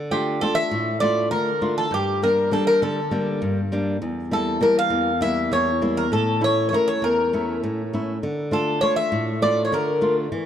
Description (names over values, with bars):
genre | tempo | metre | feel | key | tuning
greek folk, Greek bouzouki band | 200 BPM (eighths) | 7/8 | straight | D harmonic minor | A4 = 440 Hz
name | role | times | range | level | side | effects
flamenco guitar | accompaniment | 0.0-10.5 s | E2 to F4 | -23 LUFS | equal | none
Greek bouzouki | melody | 0.1-10.1 s | G4 to F5 | -21 LUFS | left 1 dB | none
room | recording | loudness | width
moderate plate reverb, RT60 3.6 s | dark, warm production | -19 LUFS | side -9 dB against mid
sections
0.0-10.5 A section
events
none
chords
0.0 Dm; 1.9 Gm; 4.0 Edim; 6.1 A; 8.2 Dm